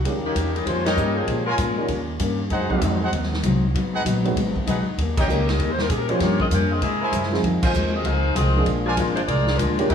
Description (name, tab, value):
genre	jazz, big band swing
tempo	195 BPM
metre	4/4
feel	swing 63% on 8ths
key	Eb mixolydian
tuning	A4 = 444 Hz
part	upright bass	bass	0.0-9.9 s	Ab1 to Bb2	-24 LUFS	equal	none
part	swinging big-band drum kit	drums	0.0-9.9 s	crash cymbal, hi-hat, kick drum, ride cymbal, snare drum	-28 LUFS	equal	none
part	picked steel-string acoustic guitar	accompaniment	0.1-9.9 s	F2 to G4	-27 LUFS	left 4 dB	none
part	warm baby grand piano	accompaniment	0.1-9.9 s	Eb3 to G#4	-26 LUFS	right 3 dB	none
part	mellow saxophone section	melody	0.3-2.0, 5.2-9.9 s	Eb3 to F5	-25 LUFS	left 2 dB	none
part	clear trumpet section	stabs	0.8-9.9 s	Eb4 to Ab5	-28 LUFS	right 1 dB	none
room	moderate scoring stage reverb, RT60 1.8 s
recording	small room ambience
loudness	-19 LUFS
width	side -8 dB against mid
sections	0.0-9.9 A section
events	band accent 0.8, 5.1, 7.6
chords	0.0 Eb7; 1.3 Bbm7; 1.9 Eb7; 2.5 Ab7; 3.7 Abm7; 5.0 Eb7; 6.2 Gm7b5; 6.8 C7alt; 7.4 Fm7; 8.7 Bb7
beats	| 0.04 0.35 0.66 0.97 | 1.28 1.59 1.90 2.20 | 2.51 2.82 3.13 3.44 | 3.75 4.05 4.36 4.67 | 4.98 5.29 5.59 5.90 | 6.21 6.52 6.82 7.13 | 7.44 7.75 8.05 8.36 | 8.67 8.98 9.29 9.60 | 9.90